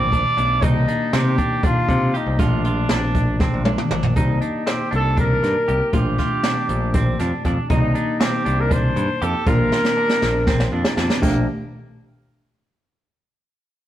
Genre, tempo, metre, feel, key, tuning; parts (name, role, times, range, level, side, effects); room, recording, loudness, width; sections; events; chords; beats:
progressive instrumental, band music in an uneven meter; 238 BPM (eighths); 7/8; straight; Bb major; A4 = 439 Hz
warm trumpet; melody; 0.0-10.7 s; D4 to D5; -22 LUFS; equal
tine electric piano; accompaniment; 0.0-11.5 s; A3 to G4; -27 LUFS; left 1 dB; medium stereo tremolo
clean electric guitar; arpeggios; 0.0-11.5 s; Bb3 to G4; -28 LUFS; right 3 dB
modern bright picked electric bass; bass; 0.0-11.5 s; Bb1 to C3; -22 LUFS; equal
jazz brush drum kit; drums; 0.1-11.3 s; crash cymbal, hi-hat, kick drum, snare drum, toms; -21 LUFS; equal
wet stone room reverb, RT60 1.2 s; rough rehearsal-room recording; -17 LUFS; side -12 dB against mid
0.0-4.2 A section; 4.2-11.2 B section; 11.2-13.0 C section
drum fill 3.4-4.2, 9.7-11.2
0.0 Bb69; 0.6 Cm9; 2.4 Bb69; 4.2 Cm9; 5.9 Bb69; 7.7 Cm9; 9.5 Bb69; 11.2 Bb6
0.12 0.38 | 0.63 0.88 1.14 1.39 1.64 1.89 2.15 | 2.40 2.65 2.90 3.16 3.41 3.66 3.92 | 4.17 4.42 4.67 4.93 5.18 5.43 5.68 | 5.94 6.19 6.44 6.70 6.95 7.20 7.45 | 7.71 7.96 8.21 8.46 8.71 8.97 9.22 | 9.47 9.72 9.97 10.23 10.48 10.73 10.98 | 11.23